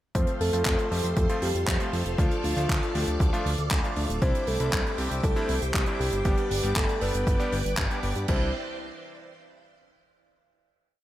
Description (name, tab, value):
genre	italo disco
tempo	118 BPM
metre	4/4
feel	straight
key	C major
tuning	A4 = 440 Hz
part	string machine, full ensemble	sustained chords	0.1-8.5 s	E4 to D6	-35 LUFS	equal	phaser, ensemble chorus
part	fat analog bass	bass	0.1-8.5 s	D1 to G2	-29 LUFS	equal	none
part	electronic kick drum	drums	0.1-8.4 s	none	-27 LUFS	equal	none
part	tight funk drum kit	drums	0.1-8.4 s	crash cymbal, handclaps, hi-hat	-32 LUFS	right 1 dB	none
part	soft octave-layered synth lead	melody	0.2-8.5 s	F4 to C5	-31 LUFS	equal	chorus, digital delay
part	bright electric grand piano	stabs	0.2-8.5 s	F3 to A4	-34 LUFS	equal	low-pass filter
room	light reverb, small room ambience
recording	none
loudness	-24 LUFS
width	side -14 dB against mid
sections	0.2-8.3 verse; 8.3-10.3 final chord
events	none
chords	0.2 F; 2.2 Dm; 4.2 Cadd9; 6.3 G; 8.3 Cadd9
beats	| 0.15 0.66 1.17 1.68 | 2.19 2.69 3.20 3.71 | 4.22 4.73 5.24 5.74 | 6.25 6.76 7.27 7.78 | 8.29